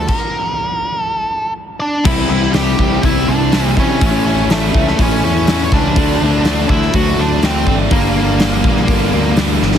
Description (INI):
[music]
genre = quiet-loud alternative rock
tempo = 123 BPM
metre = 4/4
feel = straight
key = C mixolydian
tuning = A4 = 440 Hz
[part]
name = octave-fuzz lead guitar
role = melody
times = 0.0-9.3 s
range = A3 to G5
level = -19 LUFS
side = right 1 dB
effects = distortion, analog delay
[part]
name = fuzz fingered electric bass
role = bass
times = 0.0-9.8 s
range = G1 to C3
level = -18 LUFS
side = equal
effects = overdrive
[part]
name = huge arena drum kit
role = drums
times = 0.1-9.8 s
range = crash cymbal, hi-hat, kick drum, snare drum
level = -17 LUFS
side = equal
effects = none
[part]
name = biting overdriven guitar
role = riff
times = 2.0-9.8 s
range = G2 to E4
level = -21 LUFS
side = left 15 dB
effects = spring reverb
[part]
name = crunchy overdriven guitar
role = riff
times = 2.0-9.8 s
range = G2 to D4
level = -21 LUFS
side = equal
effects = spring reverb
[part]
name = distorted electric guitar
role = riff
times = 2.1-9.8 s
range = G2 to E4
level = -22 LUFS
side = right 14 dB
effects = distortion
[sound]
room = little or no reverb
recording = heavily compressed radio sound, multiband compression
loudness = -12 LUFS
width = side -9 dB against mid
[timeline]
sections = 0.0-2.1 A section; 2.1-9.8 B section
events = drum fill 9.6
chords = 0.1 N.C.; 2.1 C; 4.0 A; 6.0 D; 7.9 Gm